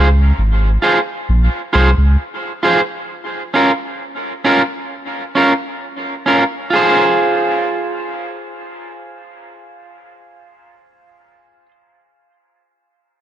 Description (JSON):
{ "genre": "reggae", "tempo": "66 BPM", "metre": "4/4", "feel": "straight", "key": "unclear", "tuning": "A4 = 440 Hz", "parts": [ { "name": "electric guitar at the edge of break-up", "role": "accompaniment", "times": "0.0-11.7 s", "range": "Db4 to C5", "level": "-15 LUFS", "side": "right 1 dB", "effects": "warbly pitch drift, dub echo" }, { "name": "warm sub bass", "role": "bass", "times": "0.0-2.2 s", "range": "Ab1 to Db2", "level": "-11 LUFS", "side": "equal", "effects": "none" } ], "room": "light reverb, small room ambience", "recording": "echo-heavy mix, lossy compression artefacts", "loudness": "-13 LUFS", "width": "side -11 dB against mid", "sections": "0.0-6.7 A section; 6.7-10.4 B section", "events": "none", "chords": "0.0 Dbmaj7; 3.1 Db6; 6.7 Fm" }